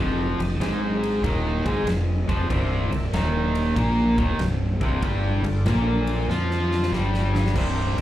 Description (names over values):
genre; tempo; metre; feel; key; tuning
blues rock power trio and southern rock; 95 BPM; 4/4; swing 66% on 8ths; unclear; A4 = 438 Hz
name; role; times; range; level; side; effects
overdriven tonewheel organ; sustained chords; 0.0-8.0 s; E4 to C6; -38 LUFS; right 2 dB; chorus vibrato, slow rotary speaker
overdriven electric guitar; riff; 0.0-8.0 s; C2 to F4; -24 LUFS; equal; slapback echo
fuzz fingered electric bass; bass; 0.0-8.0 s; C1 to F2; -24 LUFS; equal; overdrive
huge arena drum kit; drums; 0.4-8.0 s; crash cymbal, kick drum, ride cymbal, snare drum; -29 LUFS; equal; none
room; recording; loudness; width
little or no reverb; live gig heard through the venue's PA, club reverb; -20 LUFS; side -13 dB against mid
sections
0.0-7.6 A section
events
tonewheel organ fill 0.6-2.5, 6.3-7.6; drum fill 6.3-7.6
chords
0.0 F7; 2.5 C7; 5.0 G7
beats
0.61 1.24 1.87 | 2.50 3.13 3.77 4.40 | 5.03 5.66 6.29 6.92 | 7.56